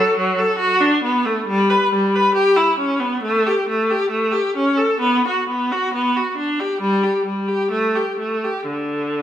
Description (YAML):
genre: classical, baroque-style suite movement for unaccompanied viola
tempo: 61-70 BPM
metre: 4/4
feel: rubato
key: unclear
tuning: A4 = 441 Hz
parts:
  - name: clear viola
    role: solo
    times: 0.0-9.2 s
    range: D3 to B4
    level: -16 LUFS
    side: equal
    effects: none
room: wet recital hall reverb, RT60 1.5 s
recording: none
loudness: -16 LUFS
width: side -10 dB against mid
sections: 0.0-9.2 A section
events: none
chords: none